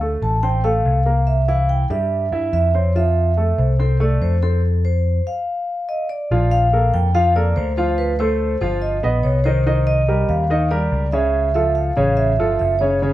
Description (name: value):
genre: Afro-Cuban jazz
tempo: 143 BPM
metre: 4/4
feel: straight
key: F major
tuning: A4 = 440 Hz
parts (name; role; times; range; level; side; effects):
- warm concert grand piano; accompaniment; 0.0-13.1 s; Db3 to F5; -22 LUFS; equal; none
- picked electric bass; bass; 0.0-13.1 s; Gb1 to G2; -18 LUFS; equal; none
- vibraphone with medium mallets; melody; 0.2-13.1 s; A4 to A5; -21 LUFS; right 1 dB; none
room: wet studio reverb, RT60 0.5 s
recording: heard from further back in the room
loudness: -16 LUFS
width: side -14 dB against mid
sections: 0.0-6.3 A section; 6.3-13.1 B section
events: stop 4.6-6.3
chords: 0.0 Dm7; 1.3 C7; 3.0 Fmaj7; 5.5 N.C.; 6.3 Bbmaj7; 8.0 Dm7; 8.8 G7alt; 9.7 Cm11; 11.3 Dbaug